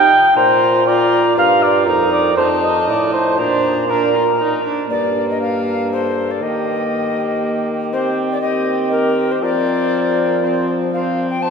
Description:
classical, renaissance-style consort dance; 120 BPM; 3/4; straight; Bb major; A4 = 440 Hz
alto recorder; melody; 0.0-11.5 s; Bb4 to Bb5; -21 LUFS; left 4 dB
mellow cor anglais; second line; 0.0-11.5 s; G4 to G5; -17 LUFS; right 2 dB
warm viola; accompaniment; 0.0-11.5 s; Bb3 to F4; -22 LUFS; left 1 dB
mellow bassoon; bass; 0.0-11.5 s; F2 to F3; -21 LUFS; equal
wet cathedral reverb, RT60 4.9 s; recorded in a church or concert hall; -14 LUFS; side -6 dB against mid
0.0-4.9 A section; 4.9-11.5 B section
0.4 Bb; 1.9 F7sus4; 2.4 F7; 3.4 Bb; 4.9 Gm; 6.4 Eb; 7.9 Cm/Eb; 9.4 Fsus4
| 0.36 0.86 1.36 | 1.87 2.37 2.87 | 3.38 3.89 4.40 | 4.91 5.42 5.92 | 6.42 6.92 7.43 | 7.93 8.43 8.93 | 9.43 9.93 10.43 | 10.93 11.43

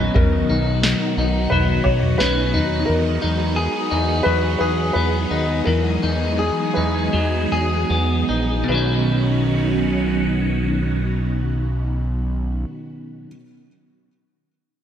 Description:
dream pop; 75-88 BPM; 4/4; straight; B major; A4 = 441 Hz
felt-muted upright piano; melody; 0.0-13.3 s; G#4 to C#5; -25 LUFS; left 1 dB; wide subtle chorus, digital delay
phased string machine; sustained chords; 0.0-12.7 s; D#3 to G#4; -24 LUFS; right 1 dB; ensemble chorus, phaser
clean electric guitar; arpeggios; 0.0-13.4 s; B2 to G#4; -23 LUFS; left 1 dB; lush chorus, digital delay
fat analog bass; bass; 0.0-12.7 s; A#1 to E2; -22 LUFS; equal
soft vintage rhythm box; drums; 0.2-2.7 s; kick drum, snare drum, toms; -21 LUFS; equal; gated reverb
moderate lush hall reverb, RT60 1.9 s; bright 1980s-style digital production; -17 LUFS; side -9 dB against mid
0.0-8.7 A section; 8.7-11.9 B section
slowing down 2.9-8.7
0.0 Bmaj9; 2.9 Emaj9; 8.7 Badd9
| 0.15 0.84 1.52 2.20 | 2.88 3.56 4.25 4.95 | 5.66 6.39 7.13 7.90 | 8.69 9.49 10.29 11.09

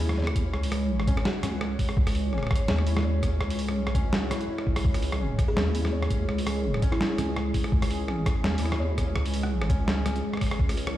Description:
half-time drum and bass; 167 BPM; 4/4; swing 55% on 16ths, half-time; C# minor; A4 = 440 Hz
deep dark ambient pad; sustained chords; 0.0-11.0 s; G#3 to C#5; -33 LUFS; left 1 dB; chorus, built-in reverb, sidechain pumping
felt-muted upright piano; arpeggios; 0.0-11.0 s; C#4 to C#5; -36 LUFS; left 2 dB; vintage 12-bit sampler grit, dub echo
deep soft wobble bass; bass; 0.0-11.0 s; C#2 to D#2; -27 LUFS; equal; chorus
boom bap sampler-style drum kit; drums; 0.1-10.9 s; hi-hat, rim click, snare drum; -31 LUFS; right 1 dB
electronic kick drum; drums; 0.4-10.7 s; -26 LUFS; equal
buzzing kalimba; melody; 5.5-7.1 s; E4 to G#4; -36 LUFS; equal; tape echo
digital ambience; played on a big sound system in a bare room, stone room reverb; -24 LUFS; side -13 dB against mid
0.0-11.0 A section
0.0 C#5
0.18 | 0.54 0.90 1.25 1.61 | 1.97 2.33 2.69 3.05 | 3.41 3.77 4.13 4.49 | 4.85 5.21 5.57 5.92 | 6.28 6.64 7.00 7.36 | 7.72 8.08 8.44 8.80 | 9.16 9.52 9.88 10.24 | 10.60 10.96

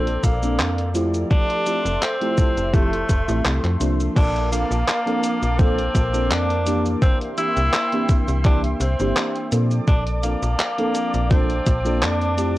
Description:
vaporwave; 84 BPM; 4/4; swing 54% on 16ths; Bb lydian; A4 = 444 Hz
clear tenor saxophone; melody; 0.0-12.6 s; A3 to E4; -25 LUFS; equal; cassette tape, tape echo
FM electric piano with soft pad layer; accompaniment; 0.0-12.6 s; E3 to A4; -25 LUFS; equal; wide subtle chorus, cassette tape
lush unison pad; sustained chords; 0.0-12.6 s; Bb3 to D6; -30 LUFS; equal; chorus, cassette tape
slap-like FM bass; bass; 0.0-12.6 s; F1 to Bb2; -23 LUFS; equal; transformer saturation
detuned 8-bit digital drum machine; drums; 0.1-12.5 s; cabasa, crash cymbal, handclaps, hi-hat; -26 LUFS; equal; vintage 12-bit sampler grit, studio reverb
electronic kick drum; drums; 0.2-11.8 s; -18 LUFS; equal; vintage 12-bit sampler grit, studio reverb
light reverb, digital ambience; home recording on cassette; -18 LUFS; side -16 dB against mid
0.0-4.2 A section; 4.2-12.6 B section
0.0 Bbmaj7; 1.3 Fmaj7; 4.2 Bbmaj7; 7.0 C7; 9.5 Bbmaj7
0.59 | 1.31 2.02 2.74 3.45 | 4.17 4.88 5.59 6.31 | 7.02 7.74 8.45 9.16 | 9.88 10.59 11.31 12.02

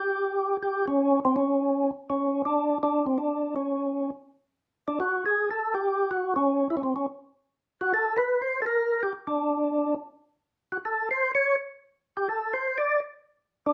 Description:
jazz; 164 BPM; 4/4; swing 65% on 8ths; D major; A4 = 441 Hz
percussive tonewheel organ; solo; 0.0-13.7 s; C4 to D5; -26 LUFS; equal; slow rotary speaker, overdrive, chorus vibrato
moderate studio reverb, RT60 0.6 s; -27 LUFS; mono
0.0-4.3 A section; 4.3-13.7 B section
0.23 0.60 0.97 | 1.33 1.70 2.06 2.43 | 2.79 3.16 3.53 3.89 | 4.26 4.62 4.99 5.35 | 5.72 6.08 6.45 6.81 | 7.18 7.54 7.91 8.27 | 8.64 9.00 9.37 9.73 | 10.10 10.46 10.83 11.19 | 11.56 11.92 12.29 12.65 | 13.02 13.38

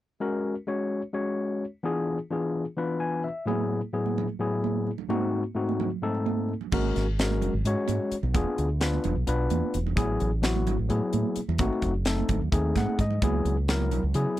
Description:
electric jazz fusion; 258 BPM (eighths); 7/8; straight; G# minor; A4 = 440 Hz
overdriven tine electric piano; accompaniment; 0.2-14.4 s; G#2 to G#5; -28 LUFS; left 2 dB
congas; percussion; 3.5-14.0 s; -34 LUFS; right 15 dB
fingered electric bass; bass; 6.7-14.2 s; E1 to C#3; -27 LUFS; equal
crisp fusion drum kit; drums; 6.7-14.4 s; crash cymbal, hi-hat, kick drum, snare drum; -29 LUFS; equal
little or no reverb; dry, close 1970s-style studio recording; -25 LUFS; side -14 dB against mid
0.2-6.7 A section; 6.7-14.4 B section
tine electric piano fill 2.8-3.5, 12.5-13.2
0.2 G#9sus4; 1.8 E7b9; 3.5 Asus2; 5.1 G#7b9; 6.7 G#9sus4; 8.3 E7b9; 10.0 Asus2; 11.6 G#7b9; 13.2 C#m7
| 0.21 0.45 0.68 0.91 1.15 1.38 1.61 | 1.84 2.08 2.31 2.54 2.77 3.00 3.24 | 3.47 3.70 3.94 4.17 4.40 4.63 4.86 | 5.10 5.33 5.56 5.79 6.03 6.26 6.49 | 6.72 6.95 7.19 7.42 7.65 7.88 8.11 | 8.35 8.58 8.81 9.04 9.27 9.51 9.74 | 9.97 10.20 10.43 10.67 10.90 11.13 11.36 | 11.59 11.83 12.06 12.29 12.52 12.75 12.99 | 13.22 13.45 13.68 13.91 14.15 14.38

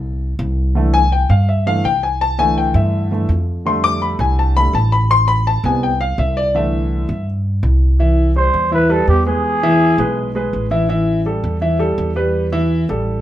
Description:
jazz; 166 BPM; 4/4; straight; C major; A4 = 440 Hz
upright bass; bass; 0.0-13.2 s; A1 to G2; -17 LUFS; equal
warm concert grand piano; accompaniment; 0.8-13.2 s; C3 to D6; -17 LUFS; left 1 dB
growling trumpet; melody; 8.4-10.3 s; G4 to C5; -16 LUFS; right 2 dB
moderate club reverb, RT60 0.8 s; minimal, uncompressed stereo recording; -14 LUFS; side -12 dB against mid
0.0-8.0 A section; 8.0-13.2 B section
grand piano solo 0.0-8.0
0.0 N.C.; 0.8 C69; 3.7 F69; 5.1 Am7; 6.5 C69; 8.0 Cmaj7; 9.4 E; 10.9 Asus2
0.03 0.39 | 0.76 1.12 1.48 1.84 | 2.20 2.57 2.93 3.29 | 3.65 4.01 4.38 4.74 | 5.10 5.46 5.82 6.18 | 6.54 6.91 7.27 7.63 | 7.99 8.36 8.72 9.08 | 9.44 9.81 10.17 10.53 | 10.90 11.26 11.62 11.99 | 12.35 12.71 13.07

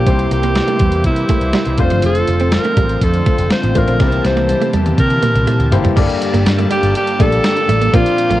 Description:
1980s-style pop; 122 BPM; 4/4; straight; A4 = 439 Hz
clear alto saxophone; melody; 0.0-8.4 s; E4 to C5; -18 LUFS; right 1 dB; cassette tape
warm concert grand piano; accompaniment; 0.0-8.4 s; G2 to D5; -21 LUFS; left 6 dB
phased analog pad; sustained chords; 0.0-8.4 s; D3 to Bb5; -24 LUFS; equal; phaser, chorus
direct-recorded clean electric guitar; riff; 0.0-8.4 s; F3 to C4; -22 LUFS; right 8 dB; analog chorus
analog synth brass; stabs; 0.0-5.9 s; E3 to A5; -26 LUFS; equal; chorus, analog delay
picked electric bass; bass; 0.0-8.4 s; F1 to C3; -17 LUFS; equal
clean 12-bit digital drum machine; drums; 0.1-8.4 s; crash cymbal, hi-hat, kick drum, snare drum, tambourine, toms; -17 LUFS; equal; cassette tape
raw garage guitar; accompaniment; 6.0-8.4 s; G2 to Bb3; -27 LUFS; equal; overdrive, ensemble chorus
moderate booth ambience, RT60 0.2 s; home recording on cassette; -12 LUFS; side -14 dB against mid
0.0-6.0 A section; 6.0-8.4 B section
drum fill 4.0-6.0
0.1 C7; 1.8 F6; 4.0 C7; 6.0 Gmadd9
| 0.07 0.56 1.05 1.54 | 2.03 2.52 3.02 3.51 | 4.00 4.49 4.98 5.48 | 5.97 6.46 6.95 7.44 | 7.93

